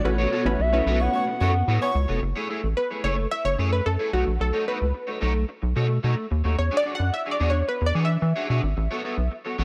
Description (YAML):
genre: funk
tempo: 110 BPM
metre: 4/4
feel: straight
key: F# minor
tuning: A4 = 439 Hz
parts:
  - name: hollow clarinet-like synth lead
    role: melody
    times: 0.0-2.0 s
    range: C#5 to F#5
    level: -28 LUFS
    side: equal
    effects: chorus
  - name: funky polysynth comp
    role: accompaniment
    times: 0.0-9.4 s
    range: A3 to F#5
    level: -29 LUFS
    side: equal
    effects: chorus
  - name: warm studio string section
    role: sustained chords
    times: 0.0-2.2 s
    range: B2 to F#4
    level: -36 LUFS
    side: equal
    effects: none
  - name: electric guitar at the edge of break-up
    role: riff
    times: 0.0-9.6 s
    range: A3 to C#5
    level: -32 LUFS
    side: equal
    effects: ensemble chorus
  - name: rubbery square bass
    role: bass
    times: 0.0-9.6 s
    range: E#1 to E3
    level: -25 LUFS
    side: equal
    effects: none
  - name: clear horn section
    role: second line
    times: 1.0-2.2 s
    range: E4 to C#5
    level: -32 LUFS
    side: equal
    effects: none
room: light reverb, small room ambience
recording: none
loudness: -24 LUFS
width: mono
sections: 0.0-2.2 A section; 2.2-9.6 B section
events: analog polysynth solo 2.2-9.6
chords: 0.0 A69; 2.2 F#m9; 4.1 B9; 6.6 E13; 8.8 A69